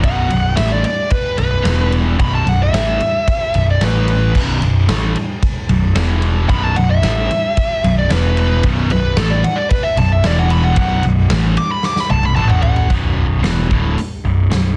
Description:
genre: hard rock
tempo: 112 BPM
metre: 4/4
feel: straight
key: B minor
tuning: A4 = 440 Hz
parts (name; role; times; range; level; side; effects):
- bluesy overdriven lead guitar; melody; 0.0-12.9 s; A4 to D6; -22 LUFS; equal; distortion
- overdriven electric guitar; riff; 0.0-14.7 s; B1 to A3; -20 LUFS; equal; none
- fuzz picked electric bass; bass; 0.0-14.8 s; B0 to A1; -19 LUFS; equal; overdrive
- big rock drum kit; drums; 0.0-14.6 s; crash cymbal, hi-hat, kick drum, ride cymbal, snare drum, toms; -22 LUFS; equal; vintage 12-bit sampler grit, soft clipping on snare
room: moderate studio reverb, RT60 0.6 s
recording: dense, heavily limited modern master, cassette tape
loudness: -15 LUFS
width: mono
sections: 0.0-12.9 A section; 12.9-14.8 B section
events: lead electric guitar solo 0.0-12.9; drum fill 11.8-12.9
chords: 0.0 B5; 1.7 E5; 2.2 B5; 3.8 A5; 4.4 B5; 6.0 E5; 6.5 B5; 8.1 E5; 8.6 B5; 10.2 E5; 10.8 B5; 12.4 A5; 12.9 Bm

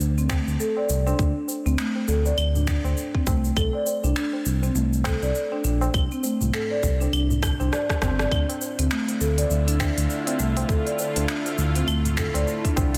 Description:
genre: organic downtempo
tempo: 101 BPM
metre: 4/4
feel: swing 59% on 16ths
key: D minor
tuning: A4 = 439 Hz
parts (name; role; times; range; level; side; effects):
- smooth synth bass; bass; 0.0-13.0 s; G1 to D2; -26 LUFS; equal; none
- afro-pop drum kit; drums; 0.0-13.0 s; claves, finger snaps, hi-hat, rim click, shaker; -33 LUFS; equal; soft clipping on snare
- marimba with soft mallets; arpeggios; 0.2-12.9 s; A3 to D5; -29 LUFS; equal; low-pass filter, digital delay
- electronic kick drum; drums; 0.3-12.9 s; none; -27 LUFS; equal; none
- tabla; percussion; 0.3-12.9 s; none; -38 LUFS; equal; none
- bowed-like drone; sustained chords; 8.8-13.0 s; D3 to F4; -33 LUFS; equal; built-in reverb, phaser, sidechain pumping
room: moderate lush hall reverb, RT60 2.6 s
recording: dense, heavily limited modern master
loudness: -24 LUFS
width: mono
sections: 0.0-13.0 A section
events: drum fill 7.4-8.3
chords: 0.0 D5; 3.6 C5; 8.3 Dm

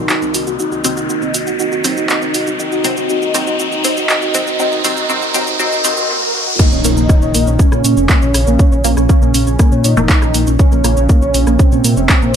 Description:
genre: melodic techno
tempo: 120 BPM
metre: 4/4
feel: straight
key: Bb minor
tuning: A4 = 441 Hz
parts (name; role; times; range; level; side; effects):
- fat analog lead; melody; 0.0-12.4 s; C4 to Eb4; -19 LUFS; right 1 dB; lush chorus, sidechain pumping, ping-pong delay
- dark analog pad; sustained chords; 0.1-6.1 s; C4 to Eb5; -27 LUFS; left 1 dB; none
- soft round pluck; arpeggios; 0.0-12.3 s; Bb3 to Db5; -20 LUFS; right 1 dB; wide subtle chorus, sidechain pumping, digital delay
- dark detuned saw bass; bass; 0.0-12.3 s; F1 to Bb2; -17 LUFS; equal; sidechain pumping
- analog drone; drone; 0.0-6.1 s; Bb2; -34 LUFS; left 2 dB; none
- riser, swell and impact; sound effects; 0.0-8.6 s; none; -20 LUFS; equal; none
- punchy analog drum machine; drums; 0.1-12.3 s; crash cymbal, handclaps, hi-hat, rim click, shaker; -19 LUFS; right 1 dB; sidechain pumping on perc, high-pass filter on perc, high-pass filter on snare, sidechain pumping on hats, high-pass filter on hats, sidechain pumping on cymbals, high-pass filter on cymbals
- filtered dub chord stab; stabs; 0.8-11.0 s; Bb2 to C4; -21 LUFS; left 1 dB; phaser, sidechain pumping, digital delay
- electronic kick drum; drums; 6.6-12.2 s; none; -11 LUFS; equal; none
room: light reverb, digital ambience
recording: high-pass filter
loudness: -11 LUFS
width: side -8 dB against mid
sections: 0.0-6.6 A section; 6.6-12.4 B section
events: build-up 0.0-6.6; riser 0.0-6.6; filter sweep on synth arpeggio sound 0.0-6.6; filter sweep on analog synth lead 0.0-6.6; filter sweep 0.0-6.6; swell 5.6-6.6; break 6.1-6.6; drop 6.6-12.4; impact 6.6-8.6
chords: 0.0 Cdim; 6.6 Bbmadd9

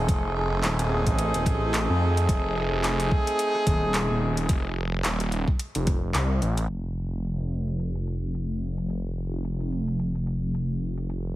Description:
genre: glitch hop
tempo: 109 BPM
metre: 4/4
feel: swing 57% on 16ths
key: unclear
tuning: A4 = 443 Hz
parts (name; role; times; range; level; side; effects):
- warm horn section; stabs; 0.0-4.7 s; A3 to G#4; -27 LUFS; right 1 dB; vintage 12-bit sampler grit, sidechain pumping, digital delay
- phased detuned saw bass; bass; 0.0-11.4 s; Eb1 to F2; -26 LUFS; equal; phaser
- dubstep drum kit; drums; 0.1-11.2 s; crash cymbal, handclaps, hi-hat, rim click; -31 LUFS; equal; overdrive, studio reverb
- electronic kick drum; drums; 0.1-6.0 s; none; -24 LUFS; equal; overdrive, studio reverb
room: little or no reverb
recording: heavily compressed radio sound, vinyl crackle, low-pass filter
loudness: -24 LUFS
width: side -16 dB against mid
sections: 0.0-6.7 A section; 6.7-11.4 B section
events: drop 0.0-6.7; filter sweep 6.7-11.4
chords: 0.0 F7#9; 6.7 N.C.

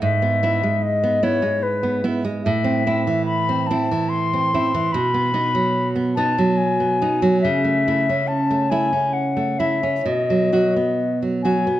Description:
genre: romantic duo for flute and classical guitar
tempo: 64-75 BPM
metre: 3/4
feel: rubato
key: unclear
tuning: A4 = 441 Hz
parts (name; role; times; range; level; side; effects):
- concert flute; melody; 0.0-11.8 s; B4 to C6; -21 LUFS; left 4 dB; none
- nylon-string guitar; accompaniment; 0.0-11.8 s; G#2 to F#4; -20 LUFS; right 2 dB; none
room: moderate recital hall reverb, RT60 1.6 s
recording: dark, warm production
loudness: -17 LUFS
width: side -13 dB against mid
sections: 0.0-11.8 A section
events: none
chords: 0.0 E/G#; 2.4 Am; 4.9 B; 7.4 A/C#; 10.0 B

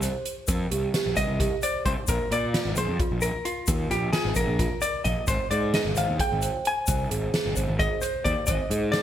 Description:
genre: progressive instrumental, band music in an uneven meter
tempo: 262 BPM (eighths)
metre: 7/8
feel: straight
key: Ab lydian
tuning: A4 = 444 Hz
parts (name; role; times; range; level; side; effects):
- large celesta; arpeggios; 0.0-9.0 s; F4 to C5; -31 LUFS; right 3 dB; none
- fuzz picked electric bass; bass; 0.0-9.0 s; G1 to Bb2; -28 LUFS; equal; overdrive
- soft-mallet drum kit; drums; 0.0-9.0 s; hi-hat, kick drum, snare drum; -28 LUFS; equal; gated reverb
- egg shaker; percussion; 0.0-8.7 s; none; -34 LUFS; left 7 dB; none
- vintage hollow-body jazz guitar; accompaniment; 1.2-9.0 s; F4 to Ab5; -28 LUFS; left 2 dB; none
room: moderate plate reverb, RT60 2.0 s, small room reverb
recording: bright 1980s-style digital production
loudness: -23 LUFS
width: side -10 dB against mid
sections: 0.0-9.0 A section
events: hollow-body jazz guitar solo 0.0-9.0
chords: 0.0 C7(no3); 2.1 Bb7sus4; 5.3 Abmaj7

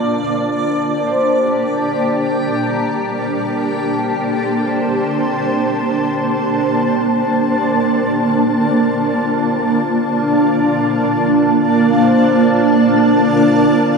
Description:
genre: ambient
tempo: free time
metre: none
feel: none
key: Bb major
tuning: A4 = 440 Hz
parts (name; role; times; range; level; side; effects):
- granular cloud pad; sustained chords; 0.0-14.0 s; Bb3 to A5; -14 LUFS; right 1 dB; built-in reverb
- concert harp; arpeggios; 1.1-14.0 s; A4 to F5; -23 LUFS; left 1 dB; ping-pong delay
room: wet huge ambient reverb, RT60 8.1 s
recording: in a vast, echoing space, cassette tape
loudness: -13 LUFS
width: side -4 dB against mid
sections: 0.0-6.7 A section; 6.7-14.0 B section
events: fade-in on harp 6.7-14.0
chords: 0.0 Bbmaj7

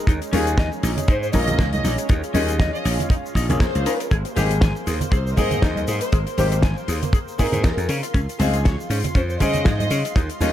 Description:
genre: nu-disco, nu disco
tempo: 119 BPM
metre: 4/4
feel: swing 55% on 16ths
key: unclear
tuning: A4 = 441 Hz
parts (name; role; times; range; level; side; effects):
- bright grand piano; accompaniment; 0.0-10.5 s; Ab3 to C5; -28 LUFS; left 4 dB; none
- lush unison pad; sustained chords; 0.0-10.5 s; Ab3 to C6; -32 LUFS; right 1 dB; chorus, sidechain pumping
- electric guitar at the edge of break-up; riff; 0.1-10.5 s; Ab3 to Ab5; -31 LUFS; left 2 dB; lush chorus
- slap bass; bass; 0.1-10.5 s; Ab1 to Db3; -23 LUFS; equal; none
- damped 70s drum kit; drums; 0.1-10.5 s; hi-hat, shaker, snare drum; -29 LUFS; left 2 dB; none
- kick drum; drums; 0.1-10.3 s; none; -18 LUFS; equal; none
- tube shaker and congas; percussion; 0.1-10.5 s; none; -29 LUFS; right 3 dB; none
- warm studio violin section; melody; 0.3-10.5 s; Ab4 to Eb5; -28 LUFS; left 1 dB; dub echo
room: small room ambience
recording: none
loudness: -18 LUFS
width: side -12 dB against mid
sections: 0.0-10.5 A section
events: none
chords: 0.1 Eb7sus4; 4.1 Abadd9; 7.9 Dbmaj7

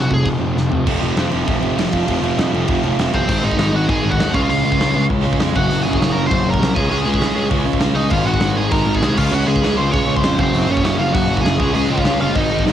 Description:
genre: punk rock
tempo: 198 BPM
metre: 4/4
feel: straight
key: unclear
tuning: A4 = 439 Hz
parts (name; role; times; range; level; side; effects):
- biting lead guitar; melody; 0.0-0.3, 3.1-12.7 s; C4 to Db6; -22 LUFS; equal; overdrive
- crunchy overdriven guitar; riff; 0.0-12.7 s; F2 to Db4; -22 LUFS; right 10 dB; cassette tape
- sludgy distorted guitar; riff; 0.0-12.7 s; F2 to Db4; -21 LUFS; left 7 dB; overdrive, cassette tape
- sludgy distorted guitar; riff; 0.0-3.3, 8.1-12.7 s; F2 to Db4; -27 LUFS; equal; none
- fuzz picked electric bass; bass; 0.0-12.7 s; F1 to F2; -21 LUFS; equal; overdrive
- big rock drum kit; drums; 0.1-12.7 s; crash cymbal, hi-hat, kick drum, snare drum, toms; -22 LUFS; equal; none
room: studio ambience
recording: home recording on cassette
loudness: -14 LUFS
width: side -10 dB against mid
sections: 0.9-3.3 A section; 3.3-12.7 B section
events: drum fill 0.6-0.9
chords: 0.0 F5; 3.3 Ab; 4.3 Db; 5.5 Gb; 6.8 Db5; 8.1 Ab; 9.2 Db; 10.4 Gb5; 11.6 Db

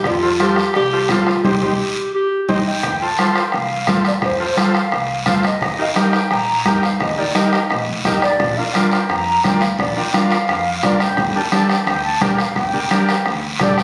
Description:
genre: latin, cumbia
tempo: 172 BPM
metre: 4/4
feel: straight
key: unclear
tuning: A4 = 440 Hz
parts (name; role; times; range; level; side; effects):
- mellow clarinet; second line; 0.0-2.8 s; Eb4 to G4; -21 LUFS; equal; none
- upright bass; bass; 0.0-13.8 s; F1 to A2; -29 LUFS; equal; none
- bombo; percussion; 0.0-13.8 s; none; -24 LUFS; equal; none
- congas; percussion; 0.1-13.8 s; none; -22 LUFS; equal; none
- cowbell and timbales; percussion; 0.1-2.6 s; none; -32 LUFS; equal; none
- guiro; percussion; 0.1-13.8 s; none; -29 LUFS; equal; none
- overdriven combo organ; accompaniment; 0.2-13.8 s; D4 to C5; -24 LUFS; equal; none
- breathy mellow concert flute; melody; 2.5-13.8 s; C5 to Bb5; -23 LUFS; equal; none
room: moderate large studio reverb, RT60 0.8 s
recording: recorded on a phone in the room, studio reverb, compression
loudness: -17 LUFS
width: mono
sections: 0.0-2.8 A section; 2.8-13.8 B section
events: band accent 1.4-2.8; drum fill 1.8-2.8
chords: 0.1 F; 1.4 Cm; 2.8 F; 5.6 Eb; 8.4 Bb; 11.2 Gmadd9

